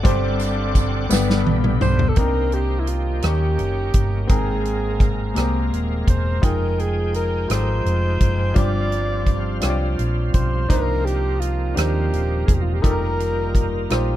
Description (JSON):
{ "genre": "slow gospel", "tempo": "56 BPM (dotted quarters)", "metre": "6/8", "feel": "straight", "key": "C minor", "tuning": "A4 = 441 Hz", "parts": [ { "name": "bright baby grand piano", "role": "accompaniment", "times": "0.0-14.2 s", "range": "G2 to G5", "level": "-26 LUFS", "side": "left 2 dB", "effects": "none" }, { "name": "bright tonewheel organ", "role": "sustained chords", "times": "0.0-14.2 s", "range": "D3 to G5", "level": "-28 LUFS", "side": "right 1 dB", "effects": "slow rotary speaker, overdrive, chorus vibrato" }, { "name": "hollow-body short-scale fingered electric bass", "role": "bass", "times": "0.0-14.2 s", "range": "Eb1 to Eb2", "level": "-22 LUFS", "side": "equal", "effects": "none" }, { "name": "natural country drum kit", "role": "drums", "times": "0.0-14.1 s", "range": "hi-hat, kick drum, rim click, snare drum, toms", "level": "-20 LUFS", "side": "equal", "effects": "none" }, { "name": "tambourine", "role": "percussion", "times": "0.4-2.1 s", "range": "none", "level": "-31 LUFS", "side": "right 7 dB", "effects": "none" }, { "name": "breathy alto saxophone", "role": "melody", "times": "1.8-13.9 s", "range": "E4 to D5", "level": "-26 LUFS", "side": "equal", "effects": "none" } ], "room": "little or no reverb", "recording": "dark, warm production", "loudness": "-18 LUFS", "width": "side -13 dB against mid", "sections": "0.0-2.2 A section; 2.2-14.2 B section", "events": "tonewheel organ solo 0.0-2.2; drum fill 1.1-2.2", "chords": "0.1 Gsus4; 1.1 G; 2.2 Cm9; 3.2 Eb7; 4.3 Abmaj9; 6.4 Fm9; 8.6 G7sus4; 10.7 Cm9; 12.8 F9sus4" }